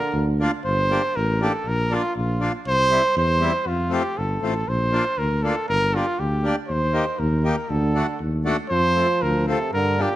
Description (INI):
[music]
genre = alpine folk, alpine dance band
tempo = 119 BPM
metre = 2/4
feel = straight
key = G minor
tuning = A4 = 440 Hz
[part]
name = warm trumpet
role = melody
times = 0.0-10.2 s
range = F4 to C5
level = -23 LUFS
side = right 1 dB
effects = none
[part]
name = clear euphonium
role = second line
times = 0.0-0.4, 7.7-10.2 s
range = Bb2 to F3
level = -28 LUFS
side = right 4 dB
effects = none
[part]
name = dark tuba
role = bass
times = 0.1-10.1 s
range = G1 to G2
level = -24 LUFS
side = equal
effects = none
[part]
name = accordion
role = accompaniment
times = 0.4-10.1 s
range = G3 to G4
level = -27 LUFS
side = left 1 dB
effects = none
[sound]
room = moderate recital hall reverb, RT60 1.5 s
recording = none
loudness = -19 LUFS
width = side -14 dB against mid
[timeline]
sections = 0.6-10.2 A section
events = none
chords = 0.0 Bb; 0.6 Gm; 1.7 Bb; 2.7 C; 3.7 F; 4.7 Bb; 5.7 Gm; 6.7 Eb; 7.7 D; 8.7 F